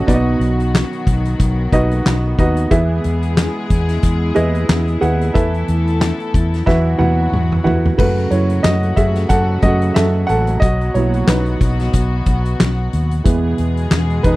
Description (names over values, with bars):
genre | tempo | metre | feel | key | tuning
piano-driven pop | 91 BPM | 4/4 | swing 56% on 16ths | F# dorian | A4 = 440 Hz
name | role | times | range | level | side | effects
warm upright piano | accompaniment | 0.0-14.4 s | B2 to F#5 | -19 LUFS | right 2 dB | none
dark studio string section | sustained chords | 0.0-14.4 s | B2 to A4 | -24 LUFS | left 2 dB | none
vintage muted fingered electric bass | bass | 0.1-14.4 s | A1 to F#2 | -17 LUFS | equal | none
loose indie drum kit | drums | 0.1-14.4 s | crash cymbal, handclaps, hi-hat, kick drum, snare drum, toms | -17 LUFS | equal | none
room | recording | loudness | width
little or no reverb | none | -13 LUFS | side -18 dB against mid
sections
0.0-8.0 A section; 8.0-14.4 B section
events
drum fill 6.7-8.0; upright piano solo 8.0-14.4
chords
0.1 B; 2.7 E; 5.4 Asus2/E; 6.7 Esus2; 8.0 F#m; 10.6 B; 13.3 E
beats
| 0.08 0.74 1.40 2.06 | 2.71 3.37 4.03 4.69 | 5.35 6.01 6.67 7.33 | 7.99 8.65 9.30 9.96 | 10.62 11.28 11.94 12.60 | 13.26 13.92